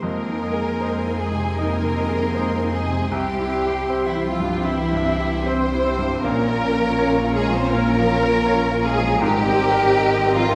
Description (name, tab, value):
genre	cinematic, emotional film score for orchestra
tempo	79 BPM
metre	4/4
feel	rubato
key	F minor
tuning	A4 = 440 Hz
part	rich symphonic violin section	melody	0.0-10.5 s	E4 to C5	-29 LUFS	equal	none
part	bright silver concert flute	second line	0.0-10.5 s	E5 to C6	-32 LUFS	equal	none
part	mellow cor anglais	second line	0.0-10.5 s	Bb4 to F5	-35 LUFS	equal	none
part	rich symphonic violin section	second line	0.0-10.6 s	Db5 to C6	-34 LUFS	equal	none
part	warm clarinet	second line	0.0-10.5 s	Ab3 to Db4	-34 LUFS	equal	none
part	bright baby grand piano	accompaniment	0.0-10.6 s	C2 to Eb5	-29 LUFS	equal	none
part	warm studio viola section	accompaniment	0.0-10.6 s	C4 to Bb4	-31 LUFS	equal	none
part	dark French horn section	sustained chords	0.0-10.5 s	E3 to C4	-28 LUFS	equal	none
part	rich symphonic cello section	bass	0.0-10.5 s	E4 to C5	-29 LUFS	equal	none
part	rich symphonic double bass section	bass	0.0-10.6 s	Ab1 to F2	-29 LUFS	equal	none
room	wet recital hall reverb, RT60 1.4 s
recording	heard from further back in the room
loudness	-20 LUFS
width	mono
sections	0.0-10.6 A section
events	none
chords	0.0 Fm7; 3.1 C; 6.2 Bbm; 9.2 Abadd9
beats	| 0.03 0.81 1.57 2.34 | 3.10 3.87 4.63 5.46 | 6.23 6.98 7.72 8.48 | 9.23 9.98